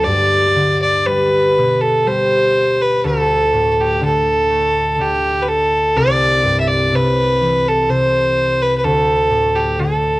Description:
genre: celtic folk, Celtic slow air.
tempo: 62 BPM.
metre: 3/4.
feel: rubato.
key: G major.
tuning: A4 = 440 Hz.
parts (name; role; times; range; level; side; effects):
rich fiddle; melody; 0.0-10.2 s; G4 to E5; -14 LUFS; equal; cassette tape.
concert harp; accompaniment; 0.0-10.2 s; C2 to D4; -18 LUFS; left 1 dB; none.
room: light reverb, small room ambience.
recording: home recording on cassette.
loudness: -13 LUFS.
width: side -19 dB against mid.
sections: 0.0-10.2 A section.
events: none.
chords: 0.0 G; 3.0 D5; 6.0 C; 8.8 D5.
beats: | 0.03 1.05 2.06 | 3.04 4.02 5.00 | 5.97 6.93 7.89 | 8.83 9.79.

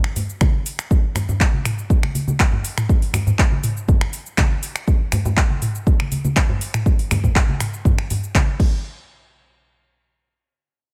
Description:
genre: house.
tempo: 121 BPM.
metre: 4/4.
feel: straight.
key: none.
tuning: none.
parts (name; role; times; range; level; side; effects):
afro-pop drum kit; drums; 0.0-8.7 s; cabasa, crash cymbal, finger snaps, handclaps, hi-hat, toms; -26 LUFS; equal; small room ambience.
congas; percussion; 0.2-8.5 s; none; -26 LUFS; equal; none.
electronic kick drum; drums; 0.4-8.7 s; none; -19 LUFS; equal; overdrive, small room ambience.
room: digital ambience.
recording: none.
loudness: -19 LUFS.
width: mono.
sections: 0.0-8.8 A section; 8.8-10.9 B section.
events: drop 0.0-8.8.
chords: none.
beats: 0.41 | 0.91 1.40 1.90 2.40 | 2.89 3.39 3.88 4.38 | 4.87 5.37 5.87 6.36 | 6.86 7.35 7.85 8.35.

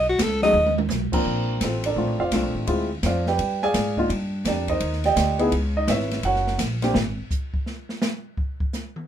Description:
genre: jazz, small-group swing and bop.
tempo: 168 BPM.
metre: 4/4.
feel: swing 64% on 8ths.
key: Bb major.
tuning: A4 = 440 Hz.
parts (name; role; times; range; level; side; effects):
warm alto saxophone; melody; 0.0-0.8 s; F#4 to D#5; -19 LUFS; equal; none.
upright bass; bass; 0.0-7.2 s; F1 to Ab2; -26 LUFS; equal; none.
open jazz drum kit; drums; 0.2-9.0 s; crash cymbal, hi-hat, kick drum, ride cymbal, snare drum, toms; -27 LUFS; right 1 dB; none.
dark baby grand piano; accompaniment; 0.4-6.9 s; F3 to Ab5; -23 LUFS; right 1 dB; none.
room: light reverb.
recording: minimal, uncompressed stereo recording.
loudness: -21 LUFS.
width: side -9 dB against mid.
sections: 0.0-1.3 A section; 1.3-9.1 A section.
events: alto saxophone solo 0.0-1.3; drum fill 0.5-0.9; drum solo 7.0-9.1.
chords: 0.0 Badd9; 1.3 Bbmaj9; 2.7 Dm7b5; 3.4 G7b9; 4.1 Cm11; 5.5 Dbm7; 6.2 Gb; 7.0 N.C..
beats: 0.19 0.54 0.90 | 1.25 1.61 1.97 2.32 | 2.68 3.03 3.39 3.74 | 4.10 4.46 4.81 5.17 | 5.53 5.88 6.24 6.59 | 6.95 7.31 7.66 8.02 | 8.38 8.73.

